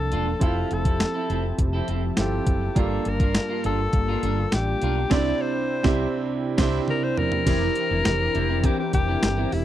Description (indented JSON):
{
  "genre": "1980s-style pop",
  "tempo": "102 BPM",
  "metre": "4/4",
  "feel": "straight",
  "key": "unclear",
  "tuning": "A4 = 440 Hz",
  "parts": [
    { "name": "bright alto saxophone", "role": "melody", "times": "0.0-9.6 s", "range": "E4 to D5", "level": "-27 LUFS", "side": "left 4 dB", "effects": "slapback echo" },
    { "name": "bright concert grand piano", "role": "accompaniment", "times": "0.0-9.6 s", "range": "G2 to A5", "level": "-28 LUFS", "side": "right 6 dB", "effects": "none" },
    { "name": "warm analog pad", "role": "sustained chords", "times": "0.0-9.6 s", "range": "C3 to A5", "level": "-32 LUFS", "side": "left 1 dB", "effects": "chorus" },
    { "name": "woody fretless electric bass", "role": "bass", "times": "0.0-9.6 s", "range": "E1 to C2", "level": "-26 LUFS", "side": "equal", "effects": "none" },
    { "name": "clean electric guitar", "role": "riff", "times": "0.1-9.6 s", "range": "C4 to C5", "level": "-32 LUFS", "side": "right 3 dB", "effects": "lush chorus, slapback echo" },
    { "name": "clean 12-bit digital drum machine", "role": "drums", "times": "0.1-9.6 s", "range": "crash cymbal, hi-hat, kick drum, snare drum, toms", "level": "-23 LUFS", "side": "equal", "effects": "overdrive" },
    { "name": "mellow synth brass", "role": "stabs", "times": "7.5-9.6 s", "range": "E3 to G4", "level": "-33 LUFS", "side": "left 1 dB", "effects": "chorus, phaser" }
  ],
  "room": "little or no reverb",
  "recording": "dry, close 1970s-style studio recording",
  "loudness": "-21 LUFS",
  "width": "side -12 dB against mid",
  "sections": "0.0-7.5 A section; 7.5-9.6 B section",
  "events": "band accent 5.1-7.5; drum fill 6.3-7.5",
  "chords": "0.4 Fmaj7; 2.8 Gm7; 5.1 Cadd9; 7.5 C7/F",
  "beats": "| 0.41 1.00 1.59 2.17 | 2.76 3.35 3.94 4.53 | 5.12 5.70 6.29 6.88 | 7.47 8.06 8.64 9.23"
}